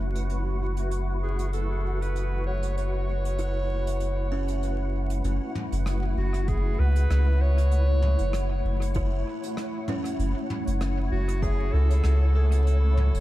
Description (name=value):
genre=ambient dub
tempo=97 BPM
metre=4/4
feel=swing 55% on 16ths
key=F# minor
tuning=A4 = 440 Hz
part: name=granular cloud pad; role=sustained chords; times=0.0-13.2 s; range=A3 to F#5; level=-34 LUFS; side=equal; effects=built-in reverb, ensemble chorus
part: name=buzzing kalimba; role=arpeggios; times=0.0-13.2 s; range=C#4 to A5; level=-37 LUFS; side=equal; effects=ping-pong delay
part: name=soft dub sub bass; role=bass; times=0.0-13.2 s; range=F#1 to C#2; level=-24 LUFS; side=equal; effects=none
part: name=soft brush drum kit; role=drums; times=0.2-13.2 s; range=hi-hat, rim click, toms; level=-39 LUFS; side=equal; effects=dub echo
part: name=clear clarinet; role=melody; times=1.2-13.2 s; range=F#4 to C#5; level=-35 LUFS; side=right 1 dB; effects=dub echo
part: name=electronic kick drum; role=drums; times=6.5-11.6 s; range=none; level=-30 LUFS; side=equal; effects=none
room=light reverb, studio ambience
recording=vinyl crackle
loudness=-23 LUFS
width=side -16 dB against mid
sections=0.0-5.2 A section; 5.2-13.2 B section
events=filter sweep on kalimba 0.0-5.2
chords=0.0 F#m9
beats=| 0.29 0.91 1.53 2.15 | 2.77 3.39 4.00 4.62 | 5.24 5.86 6.48 7.10 | 7.72 8.34 8.95 9.57 | 10.19 10.81 11.43 12.05 | 12.66